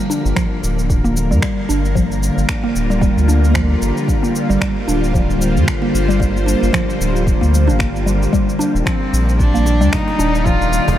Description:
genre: organic downtempo.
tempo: 113 BPM.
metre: 4/4.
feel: swing 57% on 16ths.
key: G minor.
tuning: A4 = 440 Hz.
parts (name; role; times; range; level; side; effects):
bowed-like drone; sustained chords; 0.0-11.0 s; D3 to D5; -20 LUFS; left 1 dB; built-in reverb, phaser, sidechain pumping.
mallet-like synth pluck; arpeggios; 0.0-10.5 s; F3 to D4; -21 LUFS; right 1 dB; chorus, phaser, analog delay.
electronic cabasa and finger snaps; drums; 0.1-11.0 s; none; -27 LUFS; equal; none.
warm sub bass; bass; 0.2-11.0 s; D1 to G2; -16 LUFS; equal; none.
electronic kick drum; drums; 0.4-10.6 s; none; -20 LUFS; equal; none.
cajon; percussion; 8.6-11.0 s; none; -26 LUFS; right 2 dB; none.
rich cello; melody; 8.9-11.0 s; C4 to F4; -19 LUFS; left 1 dB; analog delay.
room: moderate huge ambient reverb, RT60 7.9 s.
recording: dreamy mix soaked in reverb.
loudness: -14 LUFS.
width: side -12 dB against mid.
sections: 0.0-11.0 A section.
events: none.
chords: 0.0 Gm7; 8.3 Ebmaj7.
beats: 0.36 0.90 1.43 | 1.96 2.49 3.02 3.55 | 4.08 4.61 5.14 5.67 | 6.21 6.74 7.27 7.80 | 8.33 8.86 9.39 9.92 | 10.45.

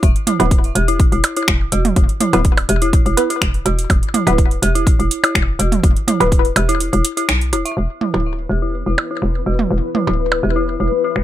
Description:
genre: minimal techno.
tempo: 124 BPM.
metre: 4/4.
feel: straight.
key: unclear.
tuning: A4 = 441 Hz.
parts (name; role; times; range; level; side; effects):
hollow knocking FM bass; bass; 0.0-11.2 s; D1 to B1; -18 LUFS; equal; sidechain pumping.
booming analog drum machine; drums; 0.0-11.2 s; finger snaps, hi-hat; -21 LUFS; right 1 dB; low-pass filter on hats, low-pass filter on snare, low-pass filter on room.
electronic kick drum; drums; 0.0-6.4 s; none; -14 LUFS; equal; none.
dark detuned synth bell; riff; 0.3-11.1 s; E4 to E5; -22 LUFS; left 1 dB; chorus, tremolo, sidechain pumping, low-pass filter, ping-pong delay.
electronic toms and percussion blips; percussion; 0.3-10.4 s; none; -19 LUFS; right 4 dB; ping-pong delay.
filtered dub chord stab; stabs; 0.4-11.0 s; B3 to B4; -20 LUFS; right 1 dB; phaser, lush chorus, cassette tape, ping-pong delay.
deep dark ambient pad; texture; 9.1-11.2 s; E4 to E5; -23 LUFS; left 6 dB; chorus, built-in reverb, sidechain pumping.
pulsing gated texture; texture; 8.1-11.2 s; B3 to B4; -29 LUFS; left 3 dB; chorus, built-in reverb, sidechain pumping.
room: light reverb.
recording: none.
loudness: -14 LUFS.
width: side -13 dB against mid.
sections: 0.0-7.8 A section; 7.8-11.2 B section.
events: drop 0.0-7.8; break 6.8-7.8; band accent 7.3; filter sweep on drum 7.8-11.2.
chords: 0.0 E5.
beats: | 0.03 0.51 1.00 1.48 | 1.96 2.45 2.93 3.42 | 3.90 4.38 4.87 5.35 | 5.83 6.32 6.80 7.29 | 7.77 8.25 8.74 9.22 | 9.71 10.19 10.67 11.16.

